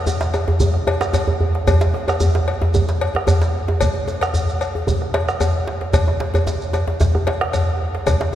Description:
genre	west african traditional, West African drum ensemble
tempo	112 BPM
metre	4/4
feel	straight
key	none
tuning	none
part	djembe	percussion	0.1-8.3 s	none	-24 LUFS	left 2 dB	none
part	djembe	percussion	0.1-8.3 s	none	-20 LUFS	right 1 dB	none
part	shekere	percussion	0.1-8.3 s	none	-27 LUFS	right 1 dB	none
part	cowbell	percussion	0.3-8.2 s	none	-25 LUFS	left 3 dB	none
part	bombo	percussion	0.6-8.2 s	none	-24 LUFS	right 2 dB	none
room	wet cathedral reverb, RT60 4.3 s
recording	recorded in a church or concert hall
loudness	-16 LUFS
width	side -12 dB against mid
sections	0.0-8.3 A section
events	none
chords	none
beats	0.07 0.60 1.14 | 1.68 2.21 2.74 3.28 | 3.81 4.34 4.88 5.41 | 5.94 6.48 7.01 7.54 | 8.07

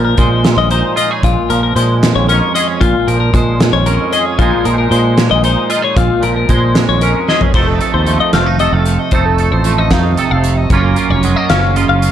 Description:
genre	math rock and midwest emo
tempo	76 BPM (dotted quarters)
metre	6/8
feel	straight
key	Bb minor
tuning	A4 = 441 Hz
part	twangy electric guitar	accompaniment	0.0-12.1 s	F2 to A4	-16 LUFS	right 6 dB	ensemble chorus, plate reverb
part	twelve-string electric guitar	arpeggios	0.0-12.1 s	F4 to F5	-16 LUFS	left 9 dB	plate reverb
part	fingered electric bass	bass	0.0-12.1 s	F1 to Bb2	-14 LUFS	equal	none
part	loose indie drum kit	drums	0.2-12.1 s	crash cymbal, hi-hat, kick drum, snare drum, toms	-17 LUFS	equal	none
room	light reverb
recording	dark, warm production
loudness	-10 LUFS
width	side -10 dB against mid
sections	0.0-7.5 A section; 7.5-12.1 B section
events	drum fill 7.3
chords	0.0 Bbm9; 7.5 F7; 10.7 Gbmaj7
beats	0.45 | 1.24 2.02 | 2.81 3.60 | 4.39 5.18 | 5.96 6.75 | 7.54 8.33 | 9.12 9.91 | 10.70 11.49

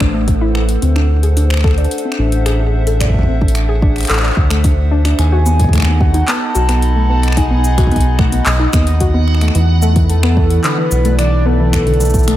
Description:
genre	IDM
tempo	110 BPM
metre	4/4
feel	straight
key	unclear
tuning	A4 = 442 Hz
part	warbly tape-like pad	sustained chords	0.0-12.4 s	A3 to B5	-23 LUFS	right 1 dB	chorus, built-in reverb, shimmer reverb
part	warbly dusty pluck	arpeggios	0.0-12.3 s	D3 to D5	-20 LUFS	left 2 dB	chorus, analog delay, shimmer reverb
part	round analog bass	bass	0.0-12.4 s	A1 to E2	-13 LUFS	equal	tube saturation
part	booming analog drum machine	drums	0.0-12.4 s	cabasa, finger snaps, handclaps, hi-hat	-22 LUFS	left 1 dB	analog delay
part	electronic kick drum	drums	0.0-12.2 s	none	-15 LUFS	equal	none
part	warbly nostalgic lead	melody	5.2-12.4 s	A4 to A5	-21 LUFS	equal	chorus, analog delay, shimmer reverb
part	backwards swelling texture	texture	7.1-12.4 s	F#5	-30 LUFS	right 2 dB	built-in reverb, shimmer reverb
room	light reverb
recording	echo-heavy mix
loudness	-11 LUFS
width	side -13 dB against mid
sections	0.0-12.4 A section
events	none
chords	0.0 Am6; 0.8 D7; 5.2 B7; 9.6 E7sus4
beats	0.28 | 0.82 1.37 1.91 2.46 | 3.00 3.55 4.10 4.64 | 5.19 5.73 6.28 6.82 | 7.37 7.91 8.46 9.01 | 9.55 10.10 10.64 11.19 | 11.73 12.28

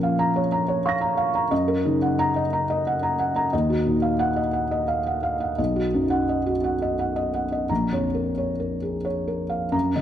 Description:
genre	neoclassical minimalist piano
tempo	88 BPM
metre	3/4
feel	uneven beats, rubato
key	Bb phrygian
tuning	A4 = 440 Hz
part	felt-muted upright piano	solo	0.0-10.0 s	Bb1 to Bb6	-21 LUFS	equal	none
room	moderate scoring stage reverb, RT60 1.7 s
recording	dark, warm production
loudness	-21 LUFS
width	side -10 dB against mid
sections	0.0-7.7 A section; 7.7-10.0 B section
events	none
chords	0.0 Bbm; 1.5 Gb6; 3.5 Ebmadd9; 5.6 B; 7.7 Bbm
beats	0.19 0.85 | 1.51 2.19 2.85 | 3.53 4.20 4.88 | 5.58 6.29 6.99 | 7.70 8.39 9.07 | 9.74

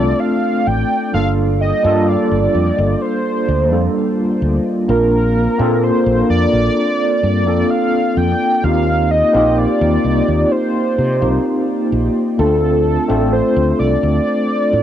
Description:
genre	vaporwave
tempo	64 BPM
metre	4/4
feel	straight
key	G minor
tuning	A4 = 438 Hz
part	warm velvety synth lead	melody	0.0-14.8 s	A4 to G5	-18 LUFS	equal	chorus, cassette tape, tape echo
part	tine electric piano	accompaniment	0.0-14.8 s	G3 to Bb4	-16 LUFS	equal	medium tremolo, lush chorus, vintage 12-bit sampler grit, cassette tape
part	fretless electric bass	bass	0.0-14.8 s	G1 to C3	-18 LUFS	equal	none
room	moderate booth ambience, RT60 0.2 s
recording	home recording on cassette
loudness	-13 LUFS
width	side -10 dB against mid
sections	0.0-14.8 A section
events	none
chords	0.0 Dm7; 1.1 Gm7; 4.9 Bbmaj7; 8.6 Eb6; 12.4 Dm7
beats	0.20 | 1.14 2.08 3.01 3.95 | 4.89 5.83 6.76 7.70 | 8.64 9.57 10.51 11.45 | 12.39 13.32 14.26

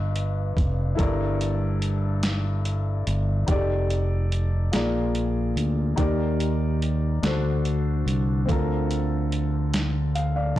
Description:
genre	slow gospel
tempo	48 BPM (dotted quarters)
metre	6/8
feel	straight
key	Bb major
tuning	A4 = 440 Hz
part	warm upright piano	accompaniment	0.0-10.6 s	G2 to F5	-28 LUFS	left 3 dB	none
part	fingered electric bass	bass	0.0-10.6 s	F1 to Eb2	-24 LUFS	right 1 dB	tube saturation
part	boom bap sampler-style drum kit	drums	0.2-10.6 s	hi-hat, kick drum, snare drum	-27 LUFS	right 1 dB	overdrive
room	little or no reverb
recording	blown-out, overdriven recording, overdrive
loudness	-22 LUFS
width	side -14 dB against mid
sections	0.0-10.6 A section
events	upright piano fill 9.7-10.6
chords	0.0 Gaug7; 1.0 Gm69; 3.5 F13; 4.7 Bb7; 6.0 Ebmaj7; 7.2 D7; 8.5 Bbmaj9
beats	| 0.98 2.23 | 3.48 4.73 | 5.98 7.23 | 8.48 9.73

